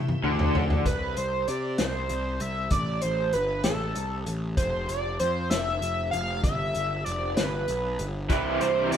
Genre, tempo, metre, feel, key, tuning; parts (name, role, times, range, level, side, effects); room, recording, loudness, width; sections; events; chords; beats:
psychedelic rock; 64 BPM (dotted quarters); 6/8; straight; A4 = 440 Hz
tonewheel organ; sustained chords; 0.0-0.8, 8.3-9.0 s; E3 to G4; -39 LUFS; right 6 dB; slow rotary speaker, chorus vibrato
vintage drum kit; drums; 0.1-9.0 s; hi-hat, kick drum, snare drum, toms; -28 LUFS; equal
raw garage guitar; riff; 0.2-0.8, 8.3-9.0 s; C3 to E4; -27 LUFS; equal; overdrive, tremolo
fuzz picked electric bass; bass; 0.2-9.0 s; F1 to C3; -30 LUFS; equal; overdrive
pulse-width lead; melody; 0.9-9.0 s; A4 to F5; -28 LUFS; right 1 dB; chorus
moderate stone room reverb, RT60 1.0 s; band playing live in one room; -24 LUFS; side -9 dB against mid
0.9-9.0 A section
drum fill 0.0-0.9
0.0 Em7; 0.9 N.C.; 2.7 Am; 4.6 Dm9/F (rootless); 6.4 G; 8.3 C
| 0.86 1.79 | 2.72 3.65 | 4.58 5.51 | 6.44 7.37 | 8.30